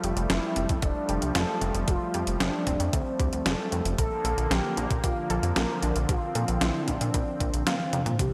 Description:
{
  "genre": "synthwave",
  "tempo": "114 BPM",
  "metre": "4/4",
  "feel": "straight",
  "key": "unclear",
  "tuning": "A4 = 440 Hz",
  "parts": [
    { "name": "expressive portamento lead", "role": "melody", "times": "0.0-8.3 s", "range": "C4 to Bb4", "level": "-34 LUFS", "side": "equal", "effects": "lush chorus, delay" },
    { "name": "brassy analog pad", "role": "sustained chords", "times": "0.0-8.3 s", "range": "D3 to C4", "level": "-35 LUFS", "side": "equal", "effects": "chorus, sidechain pumping" },
    { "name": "unison pluck", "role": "arpeggios", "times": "0.0-8.3 s", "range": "C4 to C5", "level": "-41 LUFS", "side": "equal", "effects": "none" },
    { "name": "chorused synth bass", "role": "bass", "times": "0.0-8.3 s", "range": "F1 to Bb2", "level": "-32 LUFS", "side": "equal", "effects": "tube saturation" },
    { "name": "clean 12-bit digital drum machine", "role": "drums", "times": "0.0-8.3 s", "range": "hi-hat, snare drum, toms", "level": "-32 LUFS", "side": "equal", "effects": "overdrive, gated reverb" },
    { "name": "electronic kick drum", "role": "drums", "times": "0.7-8.3 s", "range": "none", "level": "-31 LUFS", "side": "equal", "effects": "overdrive" }
  ],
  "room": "moderate lush hall reverb, RT60 2.0 s",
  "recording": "bright 1980s-style digital production",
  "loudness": "-27 LUFS",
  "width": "mono",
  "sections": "0.0-8.2 A section",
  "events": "drum fill 7.8-8.2",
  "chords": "0.0 Fadd9; 4.0 Bb"
}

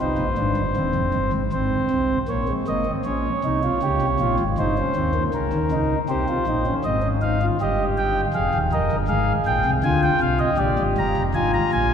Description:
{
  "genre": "classical, baroque-style 3-part fugue for pipe organ",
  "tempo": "79 BPM",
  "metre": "4/4",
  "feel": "straight",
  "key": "Ab major",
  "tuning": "A4 = 440 Hz",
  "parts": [
    { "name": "chamber organ, principal", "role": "solo", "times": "0.0-11.9 s", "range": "Eb1 to Bb5", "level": "-19 LUFS", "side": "equal", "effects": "none" }
  ],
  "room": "wet cathedral reverb, RT60 5.5 s",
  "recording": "minimal, uncompressed stereo recording",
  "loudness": "-19 LUFS",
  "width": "side -7 dB against mid",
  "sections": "0.0-1.5 A section; 1.5-11.9 B section",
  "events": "none",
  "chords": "0.0 Cm; 1.5 Ab; 3.1 Bbm7; 4.6 Eb7/G; 6.1 Ab; 7.6 Eb/G; 9.1 Fm/Ab; 10.6 Bb7"
}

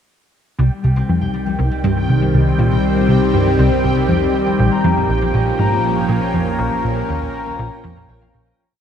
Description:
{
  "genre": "ambient, sequencer-driven space music",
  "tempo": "120 BPM",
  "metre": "4/4",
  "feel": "straight",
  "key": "Bb dorian",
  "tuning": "A4 = 440 Hz",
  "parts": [
    { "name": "evolving wavetable pad", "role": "sustained chords", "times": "1.3-8.6 s", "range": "Eb3 to Db5", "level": "-19 LUFS", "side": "equal", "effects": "phaser, built-in reverb, shimmer reverb" },
    { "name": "concert harp", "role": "arpeggios", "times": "0.6-8.8 s", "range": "G3 to Bb5", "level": "-23 LUFS", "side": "left 4 dB", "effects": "auto-pan, ping-pong delay, shimmer reverb" },
    { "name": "plucky analog bass", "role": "riff", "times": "0.6-8.5 s", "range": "Bb1 to C3", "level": "-17 LUFS", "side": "equal", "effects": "ensemble chorus, ping-pong delay" },
    { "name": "analog drone", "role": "bass", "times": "1.3-8.6 s", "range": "Bb1 to C2", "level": "-26 LUFS", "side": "right 1 dB", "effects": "chorus" },
    { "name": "bubbling stepped-filter texture", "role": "texture", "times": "0.6-8.6 s", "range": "G5", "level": "-28 LUFS", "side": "right 5 dB", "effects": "chorus, built-in reverb, shimmer reverb" }
  ],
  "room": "wet huge ambient reverb, RT60 8.2 s",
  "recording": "none",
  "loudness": "-14 LUFS",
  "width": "side -8 dB against mid",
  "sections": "0.6-8.6 A section",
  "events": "fade-out 5.9-8.6",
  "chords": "0.6 Cm; 4.6 Bbm"
}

